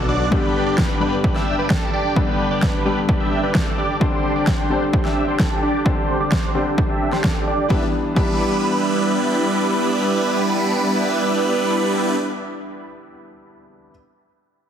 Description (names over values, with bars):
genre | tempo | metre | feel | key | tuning
EDM, festival progressive house | 130 BPM | 4/4 | straight | E minor | A4 = 440 Hz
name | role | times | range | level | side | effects
clear concert grand piano | accompaniment | 0.0-13.9 s | G2 to D4 | -25 LUFS | left 3 dB | sidechain pumping, dub echo
big supersaw lead | riff | 0.0-12.2 s | G3 to E5 | -20 LUFS | right 1 dB | phaser, sidechain pumping, low-pass filter, dub echo
electronic kick drum | drums | 0.3-8.3 s | none | -21 LUFS | equal | overdrive
electronic snare drum | drums | 0.8-7.3 s | none | -26 LUFS | equal | overdrive
room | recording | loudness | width
moderate recital hall reverb, RT60 1.7 s, digital ambience | heavily compressed radio sound, multiband compression | -17 LUFS | side -8 dB against mid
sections
0.0-7.7 A section; 7.7-11.4 B section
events
filter sweep on supersaw synth 0.0-7.7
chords
0.3 G; 4.0 Csus2; 7.7 Em7